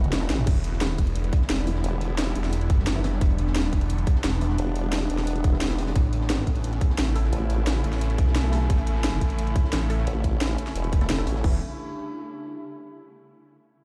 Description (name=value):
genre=dark technical drum and bass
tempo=175 BPM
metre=4/4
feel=straight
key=E dorian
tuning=A4 = 444 Hz
part: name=swarming drone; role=sustained chords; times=0.0-11.6 s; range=C#3 to F#4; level=-37 LUFS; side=equal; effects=built-in reverb, sidechain pumping
part: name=filtered dub chord stab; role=stabs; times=0.0-11.6 s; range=E3 to A4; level=-38 LUFS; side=equal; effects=phaser, digital delay
part: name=formant-sweep wobble bass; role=bass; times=0.0-2.3, 4.6-7.8, 10.1-11.4 s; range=E1 to A1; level=-28 LUFS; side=equal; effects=chorus
part: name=drum and bass drum kit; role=drums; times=0.0-11.5 s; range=crash cymbal, hi-hat, snare drum, toms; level=-31 LUFS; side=equal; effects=small room ambience
part: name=warbly tape-like pad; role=texture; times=0.0-12.8 s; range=C#4 to B5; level=-38 LUFS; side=equal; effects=chorus, built-in reverb, sidechain pumping
part: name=crunchy breakbeat drum kit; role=drums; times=0.1-11.4 s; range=hi-hat, snare drum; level=-41 LUFS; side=equal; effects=none
part: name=phased detuned saw bass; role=bass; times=0.5-11.6 s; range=E1 to B1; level=-27 LUFS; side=equal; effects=phaser, overdrive, sidechain pumping
part: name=electronic kick drum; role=drums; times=0.5-11.5 s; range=none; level=-24 LUFS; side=equal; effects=small room ambience
room=light reverb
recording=played on a big sound system in a bare room, stone room reverb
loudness=-24 LUFS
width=mono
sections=0.0-11.4 A section; 11.4-12.8 B section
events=drop 0.0-11.4; drum fill 0.0-0.5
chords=0.5 Em7; 6.0 Aadd9; 11.4 Em7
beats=0.13 | 0.47 0.81 1.16 1.50 | 1.84 2.18 2.53 2.87 | 3.21 3.56 3.90 4.24 | 4.58 4.93 5.27 5.61 | 5.96 6.30 6.64 6.98 | 7.33 7.67 8.01 8.36 | 8.70 9.04 9.38 9.73 | 10.07 10.41 10.76 11.10 | 11.44 11.78 12.13 12.47